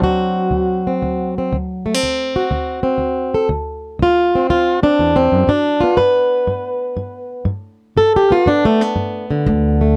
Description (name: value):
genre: acoustic country blues, solo or duo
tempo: 121 BPM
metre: 4/4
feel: swing 67% on 8ths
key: unclear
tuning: A4 = 440 Hz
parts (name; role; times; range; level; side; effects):
- fingerpicked plugged-in swing-style acoustic guitar; melody; 0.0-10.0 s; D2 to B4; -17 LUFS; equal; none
- upright bass; bass; 9.5-9.9 s; D2; -17 LUFS; equal; none
room: light reverb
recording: dry, close 1970s-style studio recording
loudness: -17 LUFS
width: mono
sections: 0.0-10.0 A section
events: steel-string acoustic guitar solo 0.0-10.0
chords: 0.0 D7; 5.5 G